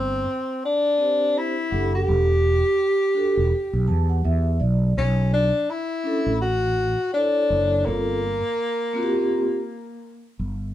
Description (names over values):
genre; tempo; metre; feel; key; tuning
hip hop, jazz-hop; 83 BPM; 4/4; swing 57% on 16ths; unclear; A4 = 440 Hz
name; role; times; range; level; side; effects
breathy tenor saxophone; melody; 0.0-10.4 s; Bb3 to G4; -22 LUFS; left 1 dB; none
mellow fretless electric bass; bass; 0.0-10.7 s; E1 to E2; -22 LUFS; equal; none
vibraphone with soft mallets; accompaniment; 1.0-9.5 s; Bb3 to A5; -26 LUFS; right 1 dB; none
room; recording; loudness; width
moderate studio reverb, RT60 0.6 s; band playing live in one room; -20 LUFS; side -12 dB against mid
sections
0.0-10.7 A section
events
vibraphone fill 3.5-5.0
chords
0.0 Am11; 2.1 Em11; 5.0 Bm11; 7.9 Gm11